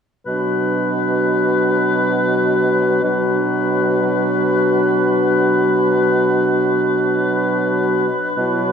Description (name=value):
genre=classical, slow romantic movement for wind quintet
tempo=free time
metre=none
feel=none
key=B minor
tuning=A4 = 444 Hz
part: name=warm oboe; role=second line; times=0.3-8.7 s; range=B4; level=-20 LUFS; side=left 3 dB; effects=none
part: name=dark clarinet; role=accompaniment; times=0.3-8.7 s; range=D4 to E4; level=-22 LUFS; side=right 4 dB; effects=none
part: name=warm French horn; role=accompaniment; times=0.3-8.7 s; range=F#3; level=-21 LUFS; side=left 1 dB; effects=none
part: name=warm bassoon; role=bass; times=0.3-8.7 s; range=B2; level=-20 LUFS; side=equal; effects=none
room=wet scoring stage reverb, RT60 2.0 s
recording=recorded in a church or concert hall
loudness=-15 LUFS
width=side -6 dB against mid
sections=0.3-8.7 A section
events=none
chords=0.3 Bm